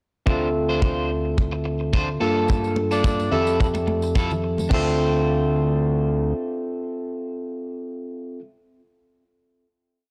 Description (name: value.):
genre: nu-disco, nu disco.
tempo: 108 BPM.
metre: 4/4.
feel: swing 54% on 16ths.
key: D minor.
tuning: A4 = 438 Hz.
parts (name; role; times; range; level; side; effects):
tine electric piano; accompaniment; 0.3-8.4 s; Bb3 to E5; -27 LUFS; equal; sidechain pumping, tape echo.
electric guitar at the edge of break-up; riff; 0.3-8.4 s; Bb3 to C5; -31 LUFS; equal; lush chorus, low-pass filter, tape echo.
fat analog bass; bass; 0.3-6.3 s; D2 to G2; -27 LUFS; equal; none.
house drum kit; drums; 0.3-4.8 s; crash cymbal, hi-hat; -42 LUFS; equal; low-pass filter on hats, studio reverb, low-pass filter on cymbals.
kick drum; drums; 0.3-4.8 s; none; -23 LUFS; equal; studio reverb.
tambourine and congas; percussion; 2.5-4.7 s; none; -34 LUFS; equal; none.
raspy tenor saxophone; melody; 2.9-3.4 s; D4; -33 LUFS; equal; tape echo.
room: moderate plate reverb, RT60 1.8 s, studio ambience.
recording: dry, gritty hardware recording, cassette tape.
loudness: -23 LUFS.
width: mono.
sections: 0.3-4.7 breakdown; 4.7-6.9 final chord.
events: none.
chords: 0.3 Dm7; 2.2 Gm9; 3.3 Fmaj7; 4.7 Dm7.